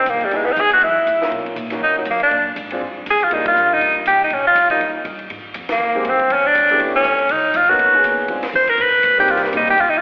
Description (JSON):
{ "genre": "jazz, small-group swing and bop", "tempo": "241 BPM", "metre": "4/4", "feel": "swing 58% on 8ths", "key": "unclear", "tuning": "A4 = 440 Hz", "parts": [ { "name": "edgy tenor saxophone", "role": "melody", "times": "0.0-10.0 s", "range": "F#3 to C5", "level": "-17 LUFS", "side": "equal", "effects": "slapback echo" }, { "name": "upright bass", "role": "bass", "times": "0.1-10.0 s", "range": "G1 to C3", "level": "-37 LUFS", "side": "equal", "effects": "none" }, { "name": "compact cocktail drum kit", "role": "drums", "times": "0.1-9.9 s", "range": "hi-hat, kick drum, ride cymbal, snare drum", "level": "-32 LUFS", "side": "equal", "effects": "none" }, { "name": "warm concert grand piano", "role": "accompaniment", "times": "0.3-9.7 s", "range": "G3 to Ab4", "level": "-27 LUFS", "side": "equal", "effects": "slapback echo" } ], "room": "light reverb, studio reverb", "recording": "live gig heard through the venue's PA, recital hall reverb, telephone sound", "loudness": "-16 LUFS", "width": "mono", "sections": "0.0-5.3 A section; 5.3-10.0 B section", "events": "band accent 3.4, 5.7", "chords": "0.3 Dbm7; 0.8 Gb7; 1.3 Bmaj7; 2.3 Bb7(no3); 3.3 Ebmaj7; 4.3 Bbm; 4.8 Eb; 5.3 Abmaj9; 6.3 Em7; 6.8 A9; 7.3 Bmaj7; 8.3 Dm7b5; 8.8 G7; 9.3 Cm7", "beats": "0.07 | 0.32 0.57 0.82 1.06 | 1.31 1.56 1.81 2.06 | 2.31 2.56 2.81 3.06 | 3.31 3.56 3.81 4.06 | 4.31 4.55 4.80 5.05 | 5.30 5.55 5.80 6.05 | 6.30 6.55 6.80 7.05 | 7.30 7.54 7.79 8.04 | 8.29 8.54 8.79 9.04 | 9.29 9.54 9.78" }